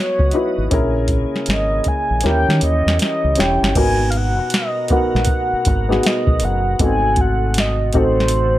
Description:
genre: R&B, neo-soul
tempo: 79 BPM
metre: 4/4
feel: swing 63% on 16ths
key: G# minor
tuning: A4 = 439 Hz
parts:
  - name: mellow horn-like synth lead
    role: melody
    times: 0.0-8.6 s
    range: B#4 to G#5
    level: -21 LUFS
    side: right 1 dB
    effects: chorus, plate reverb
  - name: dark upright piano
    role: accompaniment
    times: 0.0-8.6 s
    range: B3 to C#5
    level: -21 LUFS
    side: left 2 dB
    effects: plate reverb
  - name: tonewheel organ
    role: sustained chords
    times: 0.0-8.6 s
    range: B2 to D#5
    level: -27 LUFS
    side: right 1 dB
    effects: slow rotary speaker, chorus vibrato, plate reverb
  - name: deep dub fingered electric bass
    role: bass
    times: 0.2-8.6 s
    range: E1 to D#3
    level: -19 LUFS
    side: equal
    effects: none
  - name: soft vintage rhythm box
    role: drums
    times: 0.2-8.5 s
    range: crash cymbal, hi-hat, kick drum, snare drum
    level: -20 LUFS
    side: equal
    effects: none
room: moderate studio reverb, RT60 0.6 s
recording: none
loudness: -15 LUFS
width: side -14 dB against mid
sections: 0.0-3.8 A section; 3.8-8.6 B section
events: drum fill 2.2-3.8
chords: 0.0 C#m11; 0.7 A#m7b5; 2.2 D#7b9; 3.8 G#m9; 6.8 G#7b9

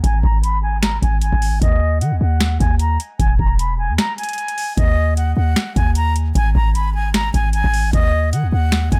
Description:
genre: hip hop, trap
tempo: 152 BPM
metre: 4/4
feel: half-time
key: Eb phrygian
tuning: A4 = 441 Hz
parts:
  - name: breathy concert flute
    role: melody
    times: 0.0-9.0 s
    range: Eb5 to Cb6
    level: -25 LUFS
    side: equal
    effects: low-pass filter, tape echo
  - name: warm 808-style bass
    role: bass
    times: 0.0-9.0 s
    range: E1 to Eb3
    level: -20 LUFS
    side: equal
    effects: none
  - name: booming analog drum machine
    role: drums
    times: 0.0-9.0 s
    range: finger snaps, hi-hat, kick drum, snare drum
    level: -20 LUFS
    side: equal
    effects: overdrive
room: digital ambience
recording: none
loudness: -18 LUFS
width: mono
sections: 0.0-9.0 A section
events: filter sweep on flute 0.0-4.8; break 4.0-4.8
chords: 0.0 Absus2; 1.6 Ebm; 3.2 E; 4.8 Ebm; 6.4 Absus2; 7.9 Ebm

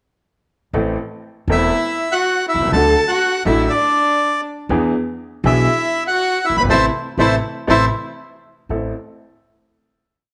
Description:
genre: tango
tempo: 121 BPM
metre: 4/4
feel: rubato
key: A dorian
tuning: A4 = 440 Hz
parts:
  - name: bright upright piano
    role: accompaniment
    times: 0.7-8.9 s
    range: E1 to A4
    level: -22 LUFS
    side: equal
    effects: none
  - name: upright bass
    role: bass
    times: 0.7-8.9 s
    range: E1 to E2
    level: -24 LUFS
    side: equal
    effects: none
  - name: bandoneon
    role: melody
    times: 1.5-7.9 s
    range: C5 to B5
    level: -20 LUFS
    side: equal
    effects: none
  - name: warm violin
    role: second line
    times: 1.5-7.9 s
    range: D4 to B4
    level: -24 LUFS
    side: equal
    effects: none
room: moderate echo chamber reverb, RT60 1.3 s, small room ambience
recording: none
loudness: -18 LUFS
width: mono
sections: 0.7-8.7 A section; 8.7-10.3 final chord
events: band accent 6.7-8.7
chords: 0.7 Am; 2.7 D; 4.7 E7; 6.7 Am; 8.2 N.C.; 8.7 Am

